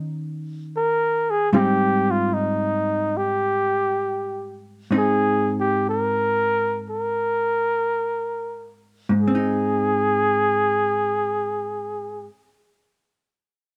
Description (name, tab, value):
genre	jazz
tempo	47-75 BPM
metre	4/4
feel	swing 69% on 8ths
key	Ab major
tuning	A4 = 439 Hz
part	vintage hollow-body jazz guitar	accompaniment	0.0-12.5 s	Ab2 to C5	-27 LUFS	equal	none
part	breathy flugelhorn	melody	0.8-12.3 s	Eb4 to Bb4	-23 LUFS	equal	none
room	light reverb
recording	close, detailed microphones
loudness	-22 LUFS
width	mono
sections	0.0-9.2 A section; 9.2-13.8 B section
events	slowing down 1.5-9.2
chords	0.0 Eb7(no3); 1.5 Abmaj7; 9.2 Ab